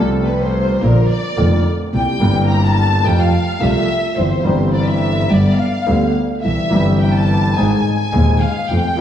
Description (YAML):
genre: tango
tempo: 107 BPM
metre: 4/4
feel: rubato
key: C major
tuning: A4 = 440 Hz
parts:
  - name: warm studio violin section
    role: second line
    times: 0.0-9.0 s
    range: A4 to Bb5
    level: -20 LUFS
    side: left 2 dB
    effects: none
  - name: warm concert grand piano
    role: accompaniment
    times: 0.0-9.0 s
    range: Eb1 to Ab4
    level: -16 LUFS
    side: equal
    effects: wide subtle chorus
  - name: clear double bass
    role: bass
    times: 0.0-9.0 s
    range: F1 to F2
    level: -18 LUFS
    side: right 1 dB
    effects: none
room: wet lush hall reverb, RT60 2.1 s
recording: dreamy mix soaked in reverb, cassette tape, small room ambience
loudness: -13 LUFS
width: side -10 dB against mid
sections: 0.0-9.0 A section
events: violin section solo 0.0-9.0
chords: 0.0 F/C; 0.8 Bb; 1.9 C7; 3.1 F; 4.2 C/G; 5.3 G; 6.4 C; 7.6 Ab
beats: 0.25 0.81 1.38 | 1.93 2.50 3.05 3.61 | 4.18 4.74 5.30 5.87 | 6.44 7.01 7.57 8.13 | 8.70